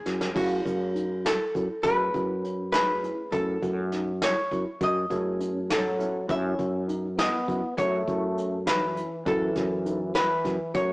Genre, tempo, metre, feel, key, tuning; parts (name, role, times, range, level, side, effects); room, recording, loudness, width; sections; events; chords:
progressive instrumental, band music in an uneven meter; 202 BPM (eighths); 5/8; straight; F# dorian; A4 = 440 Hz
archtop guitar, miked and amplified; melody; 0.0-10.9 s; F#4 to E5; -27 LUFS; equal
mellow tine electric piano; arpeggios; 0.1-10.9 s; C#4 to F#4; -35 LUFS; equal; medium stereo tremolo
fretless electric bass; bass; 0.1-10.9 s; F#2; -29 LUFS; equal
soft brush drum kit; drums; 0.1-10.9 s; crash cymbal, hi-hat, kick drum, snare drum; -32 LUFS; equal
hollow-body jazz guitar; accompaniment; 0.3-9.7 s; A3 to A4; -38 LUFS; equal
breathy trombone; second line; 5.7-10.9 s; E3 to C#4; -32 LUFS; left 1 dB
light reverb; rough rehearsal-room recording, tube saturation, small speaker sound; -24 LUFS; side -23 dB against mid
0.4-10.9 A section
drum fill 0.0-0.4
0.4 F#m7; 6.3 Aadd9/F#